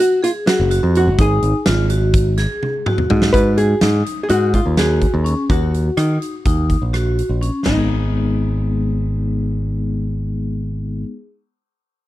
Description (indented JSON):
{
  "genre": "progressive instrumental, band music in an uneven meter",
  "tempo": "250 BPM (eighths)",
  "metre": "9/8",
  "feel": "straight",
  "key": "G# dorian",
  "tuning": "A4 = 440 Hz",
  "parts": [
    { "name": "archtop guitar, miked and amplified", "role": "melody", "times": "0.0-11.0 s", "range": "D#4 to B4", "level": "-19 LUFS", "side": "left 1 dB", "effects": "none" },
    { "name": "vibraphone with medium hard mallets", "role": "arpeggios", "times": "0.0-11.2 s", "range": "G#3 to G#4", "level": "-22 LUFS", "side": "left 1 dB", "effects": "none" },
    { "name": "huge arena drum kit", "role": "drums", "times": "0.2-7.8 s", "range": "crash cymbal, hi-hat, kick drum, rim click, snare drum, toms", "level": "-20 LUFS", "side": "equal", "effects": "none" },
    { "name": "modern bright picked electric bass", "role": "bass", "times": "0.6-11.0 s", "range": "F#1 to D#3", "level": "-18 LUFS", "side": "equal", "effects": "none" }
  ],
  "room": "little or no reverb",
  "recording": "dry, close 1970s-style studio recording",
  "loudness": "-15 LUFS",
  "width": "side -15 dB against mid",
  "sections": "0.0-3.3 A section; 3.3-7.7 B section; 7.7-12.0 C section",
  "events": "drum fill 2.6-3.3",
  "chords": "0.0 G#7(no3); 1.2 G#5; 5.5 D#m; 7.7 G#m"
}